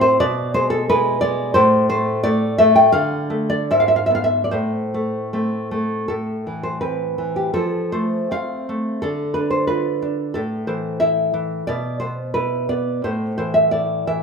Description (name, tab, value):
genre	romantic piece for solo classical guitar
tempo	73-93 BPM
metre	2/4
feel	rubato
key	A minor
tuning	A4 = 440 Hz
part	nylon-string guitar	solo	0.0-14.2 s	G#2 to G5	-17 LUFS	equal	none
room	wet recital hall reverb, RT60 1.4 s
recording	minimal, uncompressed stereo recording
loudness	-17 LUFS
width	side -5 dB against mid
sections	0.0-6.1 A section; 6.1-14.2 B section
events	none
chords	0.2 E/B; 1.6 A5; 3.0 Dm; 3.7 G#m6; 4.5 Am; 7.5 F; 9.0 Dm; 10.3 A5; 11.7 E5/B; 13.0 A5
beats	| 0.20 0.89 | 1.57 2.26 | 2.96 3.72 | 4.53 5.32 | 6.09 6.82 | 7.53 8.31 | 9.02 9.69 | 10.35 11.00 | 11.65 12.34 | 13.03 13.72